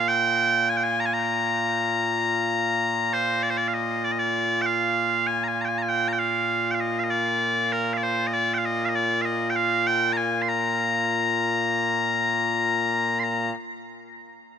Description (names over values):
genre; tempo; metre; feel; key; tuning
scottish traditional, Scottish pipe music; 98 BPM; 4/4; straight; Bb mixolydian; A4 = 437 Hz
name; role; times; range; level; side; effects
loud bright bagpipes; solo; 0.0-13.5 s; Bb2 to C6; -22 LUFS; equal; none
room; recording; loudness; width
moderate huge ambient reverb, RT60 6.5 s; minimal, uncompressed stereo recording; -21 LUFS; side -8 dB against mid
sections
0.0-3.4 A section; 3.4-13.2 B section; 13.2-14.6 C section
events
none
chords
none